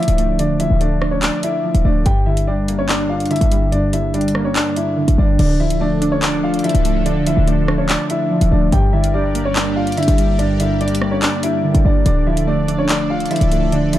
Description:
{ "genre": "hip hop, drill", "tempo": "144 BPM", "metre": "4/4", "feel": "half-time", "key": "D harmonic minor", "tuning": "A4 = 442 Hz", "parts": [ { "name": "clear upright piano", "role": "melody", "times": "0.0-14.0 s", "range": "C#4 to G5", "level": "-21 LUFS", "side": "left 2 dB", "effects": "digital delay" }, { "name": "warbly lo-fi synth keys", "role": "accompaniment", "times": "0.0-14.0 s", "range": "G2 to D5", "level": "-19 LUFS", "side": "right 2 dB", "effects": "chorus" }, { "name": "drill drum kit", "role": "drums", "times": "0.0-14.0 s", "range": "crash cymbal, handclaps, hi-hat, rim click", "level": "-23 LUFS", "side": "equal", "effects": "none" }, { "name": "short 808-style bass", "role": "bass", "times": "0.1-14.0 s", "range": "C#1 to G1", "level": "-18 LUFS", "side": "equal", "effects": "none" }, { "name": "sweeping resonant pad", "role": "sustained chords", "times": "5.4-14.0 s", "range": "D3 to D5", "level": "-25 LUFS", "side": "left 1 dB", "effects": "chorus" } ], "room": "little or no reverb", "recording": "dark, warm production", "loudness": "-14 LUFS", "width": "side -13 dB against mid", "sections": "0.0-5.4 A section; 5.4-14.0 B section", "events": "none", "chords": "0.0 Dm; 2.1 Gm; 5.4 Dm; 8.7 Gm; 12.1 Dm", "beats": "| 0.39 0.81 1.22 1.64 | 2.06 2.47 2.89 3.31 | 3.72 4.14 4.56 4.97 | 5.39 5.81 6.22 6.64 | 7.06 7.47 7.89 8.31 | 8.72 9.14 9.56 9.97 | 10.39 10.81 11.22 11.64 | 12.06 12.47 12.89 13.31 | 13.72" }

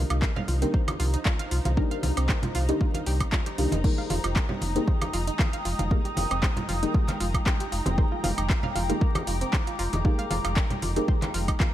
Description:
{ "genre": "deep house", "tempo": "116 BPM", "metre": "4/4", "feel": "swing 54% on 16ths", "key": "F dorian", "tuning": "A4 = 440 Hz", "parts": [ { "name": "analog pluck", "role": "arpeggios", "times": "0.0-11.7 s", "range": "C4 to F5", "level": "-35 LUFS", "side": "right 3 dB", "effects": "chorus, sidechain pumping, tape echo" }, { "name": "deep mellow chord stab", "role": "stabs", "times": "0.0-11.7 s", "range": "D4 to Bb4", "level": "-32 LUFS", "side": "left 1 dB", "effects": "chorus, phaser, sidechain pumping, tape echo" }, { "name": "sub bass with octave", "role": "bass", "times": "0.0-11.5 s", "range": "F1 to C2", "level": "-27 LUFS", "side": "equal", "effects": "sidechain pumping" }, { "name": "dark symphonic string section", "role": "texture", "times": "0.0-11.7 s", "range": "Ab3 to Bb5", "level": "-37 LUFS", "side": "left 2 dB", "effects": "sidechain pumping" }, { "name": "deep house drum kit", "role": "drums", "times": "0.1-11.7 s", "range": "crash cymbal, handclaps, hi-hat, woodblock", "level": "-32 LUFS", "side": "equal", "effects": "overdrive" }, { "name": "electronic kick drum", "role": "drums", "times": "0.2-11.7 s", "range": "none", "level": "-24 LUFS", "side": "equal", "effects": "overdrive" }, { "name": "congas", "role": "percussion", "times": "0.4-11.7 s", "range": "none", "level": "-34 LUFS", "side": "right 1 dB", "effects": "none" }, { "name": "airy breathy pad", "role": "sustained chords", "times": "4.3-11.7 s", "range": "G5 to Eb6", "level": "-34 LUFS", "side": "equal", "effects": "chorus, phaser, sidechain pumping" } ], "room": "little or no reverb", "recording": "vinyl crackle", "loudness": "-23 LUFS", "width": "side -12 dB against mid", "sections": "0.0-11.7 A section", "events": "none", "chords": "0.0 Cm7; 3.8 Fm11", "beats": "0.22 0.74 1.26 | 1.77 2.29 2.81 3.33 | 3.84 4.36 4.88 5.39 | 5.91 6.43 6.95 7.46 | 7.98 8.50 9.01 9.53 | 10.05 10.57 11.08 11.60" }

